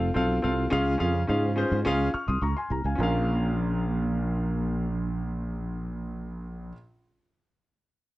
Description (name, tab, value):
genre	uptempo 1960s-style soul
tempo	106 BPM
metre	4/4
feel	straight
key	Bb minor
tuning	A4 = 440 Hz
part	warm concert grand piano	accompaniment	0.0-6.7 s	Bb1 to F6	-28 LUFS	left 1 dB	none
part	sustaining fretless electric bass	bass	0.0-6.7 s	Bb1 to Ab2	-27 LUFS	right 1 dB	ensemble chorus
room	light reverb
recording	cassette tape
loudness	-25 LUFS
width	side -17 dB against mid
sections	0.0-3.0 A section; 3.0-5.2 B section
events	none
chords	0.0 F; 0.7 Db; 3.0 Bbm